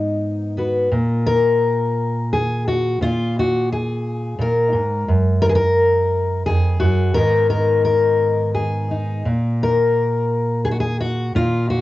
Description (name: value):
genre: folk, solo fingerstyle acoustic guitar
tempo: 86 BPM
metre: 3/4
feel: straight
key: unclear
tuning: A4 = 441 Hz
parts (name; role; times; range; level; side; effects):
- fingerpicked steel-string acoustic guitar; solo; 0.0-11.8 s; F2 to Cb5; -16 LUFS; left 1 dB; cassette tape
room: moderate studio reverb, RT60 0.5 s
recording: home recording on cassette, nothing above 7.9 kHz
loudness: -16 LUFS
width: side -16 dB against mid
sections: 0.9-11.8 A section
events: none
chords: 0.0 Abm7; 0.9 Gbadd9; 5.1 Gb; 7.2 Abmadd9; 9.3 N.C.